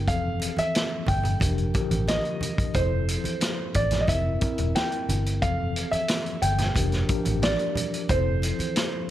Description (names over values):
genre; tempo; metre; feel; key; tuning
lush 1970s-style soul; 90 BPM; 4/4; straight; F major; A4 = 437 Hz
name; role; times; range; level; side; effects
warm concert grand piano; melody; 0.0-9.1 s; C5 to G5; -29 LUFS; right 1 dB; none
mellow tine electric piano; accompaniment; 0.0-9.1 s; D3 to Bb4; -31 LUFS; left 2 dB; medium stereo tremolo
vintage muted fingered electric bass; bass; 0.0-8.6 s; E1 to A1; -26 LUFS; equal; none
vintage drum kit; drums; 0.1-8.9 s; hi-hat, kick drum, snare drum; -27 LUFS; equal; none
congas; percussion; 0.4-8.9 s; none; -35 LUFS; right 4 dB; none
room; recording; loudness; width
light reverb, small room ambience; none; -23 LUFS; side -13 dB against mid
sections
0.0-9.1 A section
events
none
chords
0.1 Fmaj7; 1.4 Ebmaj7/F; 2.8 Fmaj7; 4.1 C7; 5.4 Fmaj7; 6.8 Gm9/F; 8.1 Fmaj7